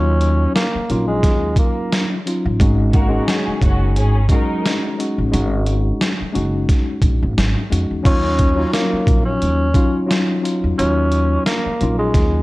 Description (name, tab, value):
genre	hip hop, boom-bap hip-hop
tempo	88 BPM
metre	4/4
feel	swing 55% on 16ths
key	Eb minor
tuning	A4 = 440 Hz
part	growling tenor saxophone	melody	0.0-2.1, 8.1-12.4 s	Ab3 to Db4	-21 LUFS	equal	high-pass filter, low-pass filter, slapback echo
part	mellow tine electric piano	accompaniment	0.0-12.4 s	Gb3 to Gb4	-21 LUFS	left 1 dB	medium stereo tremolo, cassette tape, high-pass filter, low-pass filter
part	upright bass	bass	0.0-12.4 s	Gb1 to F2	-18 LUFS	equal	none
part	boom bap sampler-style drum kit	drums	0.2-12.3 s	crash cymbal, hi-hat, kick drum, snare drum	-18 LUFS	equal	none
part	warm studio string section	stabs	2.9-4.8 s	Eb3 to Bb4	-25 LUFS	equal	high-pass filter, low-pass filter, slapback echo
room	small room ambience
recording	worn, warbling old tape, cassette tape, warbly pitch drift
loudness	-15 LUFS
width	side -20 dB against mid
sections	0.0-8.1 A section; 8.1-12.4 A section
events	none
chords	0.0 Ebm9; 2.6 Ab7sus4; 8.1 Ebm9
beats	0.56 1.24 1.92 | 2.60 3.28 3.96 4.64 | 5.33 6.01 6.69 7.37 | 8.05 8.74 9.42 10.10 | 10.78 11.46 12.14